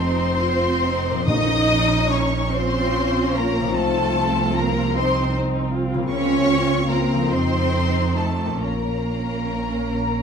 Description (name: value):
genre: classical, slow romantic movement for symphony orchestra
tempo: 43-52 BPM (dotted quarters)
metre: 6/8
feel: rubato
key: Bb minor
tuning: A4 = 441 Hz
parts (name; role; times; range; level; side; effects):
- rich studio violin section; melody; 0.0-10.2 s; A5 to Eb6; -27 LUFS; left 3 dB; none
- warm studio violin section; second line; 0.0-10.2 s; A4 to Eb5; -27 LUFS; left 2 dB; none
- dark studio viola section; accompaniment; 0.0-10.2 s; C4 to F4; -26 LUFS; equal; none
- concert harp; arpeggios; 0.0-10.2 s; F2 to F4; -27 LUFS; left 6 dB; none
- warm studio cello section; bass; 0.0-10.2 s; A3 to Eb4; -24 LUFS; right 3 dB; none
- warm studio double bass section; bass; 0.0-10.2 s; F1 to F2; -26 LUFS; right 4 dB; none
- timpani; percussion; 1.3-2.5 s; Bb2; -25 LUFS; left 1 dB; none
- mellow flute section; second line; 10.0-10.2 s; Bb5; -26 LUFS; left 4 dB; none
room: moderate scoring stage reverb, RT60 1.6 s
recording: close, detailed microphones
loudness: -18 LUFS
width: side -6 dB against mid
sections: 0.0-10.2 A section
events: none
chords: 0.0 F5; 1.3 Bbm; 3.8 F7/C; 6.1 Bbm/Db; 7.3 F7; 8.6 Bbm